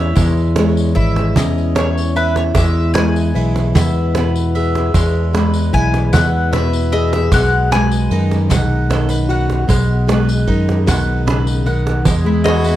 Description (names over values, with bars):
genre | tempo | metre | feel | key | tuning
acoustic folk duo or small band | 50 BPM (dotted quarters) | 6/8 | straight | E major | A4 = 440 Hz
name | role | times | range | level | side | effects
mandolin | melody | 0.0-12.8 s | B4 to G#5 | -22 LUFS | left 3 dB | none
fingerpicked steel-string acoustic guitar | accompaniment | 0.0-12.8 s | E2 to G#4 | -19 LUFS | left 2 dB | none
mandolin | arpeggios | 0.0-12.8 s | G#3 to F#5 | -25 LUFS | right 3 dB | none
fingered electric bass | bass | 0.0-12.8 s | G#1 to F#2 | -16 LUFS | equal | none
vintage brush drum kit | drums | 0.2-12.6 s | kick drum, ride cymbal, snare drum | -22 LUFS | equal | none
cajon | percussion | 0.2-12.6 s | none | -20 LUFS | right 3 dB | none
tambourine | percussion | 0.2-12.8 s | none | -32 LUFS | left 10 dB | none
warm woodwind section | sustained chords | 12.0-12.8 s | E3 to G#4 | -30 LUFS | left 1 dB | none
bright harmonica | second line | 12.4-12.8 s | F#4 | -22 LUFS | right 5 dB | none
room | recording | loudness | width
studio reverb | dry, close 1970s-style studio recording | -13 LUFS | side -13 dB against mid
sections
0.0-12.1 A section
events
mandolin solo 0.0-12.1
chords
0.0 C#m; 2.6 E; 7.3 B6; 12.1 E